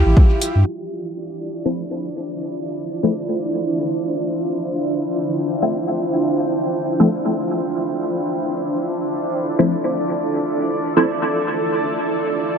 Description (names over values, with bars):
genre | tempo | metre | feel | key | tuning
dub techno | free time | none | none | D minor | A4 = 440 Hz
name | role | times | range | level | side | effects
granular cloud pad | sustained chords | 0.0-12.6 s | D4 to C5 | -22 LUFS | right 1 dB | built-in reverb, sidechain pumping
warm sub bass | bass | 0.0-0.6 s | A1 to G2 | -13 LUFS | equal | sidechain pumping
bubbling stepped-filter texture | texture | 0.0-12.6 s | D4 to G5 | -26 LUFS | right 1 dB | chorus, built-in reverb, sidechain pumping
electronic hi-hat | drums | 0.4-0.5 s | none | -28 LUFS | equal | low-pass filter on hats, low-pass filter on snare, low-pass filter on room, dub echo
filtered dub chord stab | stabs | 1.7-11.1 s | F3 to E4 | -22 LUFS | left 1 dB | phaser, vintage 12-bit sampler grit, dub echo
room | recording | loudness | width
moderate huge ambient reverb, RT60 7.6 s | vinyl crackle, low-pass filter | -18 LUFS | side -6 dB against mid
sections
0.7-12.6 A section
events
filter sweep 0.7-12.6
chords
0.0 Dmadd9 (rootless); 0.7 Dm9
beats
free time